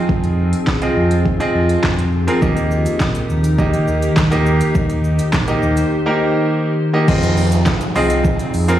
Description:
dance-pop; 103 BPM; 4/4; straight; F minor; A4 = 440 Hz
bright concert grand piano; accompaniment; 0.0-8.8 s; Bb3 to Eb5; -19 LUFS; right 1 dB; sidechain pumping
glassy FM pad; sustained chords; 0.0-8.8 s; Eb3 to C5; -20 LUFS; left 1 dB; ensemble chorus, built-in reverb, sidechain pumping
sub bass with octave; bass; 0.1-8.8 s; Bb1 to F2; -18 LUFS; equal; sidechain pumping
deep house drum kit; drums; 0.1-8.8 s; crash cymbal, handclaps, hi-hat, kick drum, shaker, snare drum; -19 LUFS; equal
downlifter; sound effects; 7.1-8.8 s; -25 LUFS; equal
group handclap; percussion; 7.7-7.8 s; barely audible
light reverb; played on a big sound system in a bare room, large studio reverb, studio reverb; -14 LUFS; side -12 dB against mid
0.0-7.1 A section; 7.1-8.8 B section
0.0 Fm7; 2.4 Eb; 7.1 Fm7

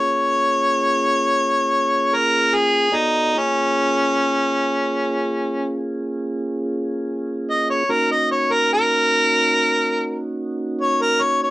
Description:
blues; 48 BPM (dotted quarters); 12/8; straight; Bb minor; A4 = 436 Hz
warm harmonica; melody; 0.0-11.5 s; Db4 to Eb5; -17 LUFS; equal; overdrive
mellow tonewheel organ; sustained chords; 0.0-11.5 s; Bb3 to D5; -24 LUFS; right 1 dB; slow rotary speaker
light reverb; worn, warbling old tape, cassette tape, warbly pitch drift; -17 LUFS; side -17 dB against mid
0.0-11.5 A section
harmonica solo 0.0-11.5
0.0 Bbm7; 7.9 Ebm7

